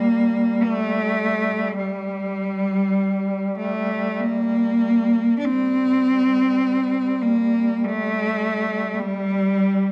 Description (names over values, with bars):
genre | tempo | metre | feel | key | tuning
caucasian folk, Caucasian lament | 50 BPM | 3/4 | rubato | G minor | A4 = 439 Hz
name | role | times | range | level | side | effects
rich cello | melody | 0.0-9.9 s | G3 to D4 | -22 LUFS | equal | none
warm duduk | drone | 0.0-9.9 s | G3 | -30 LUFS | equal | none
room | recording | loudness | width
moderate recital hall reverb, RT60 1.8 s | dark, warm production | -21 LUFS | mono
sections
0.0-5.4 A section; 5.4-9.9 B section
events
none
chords
none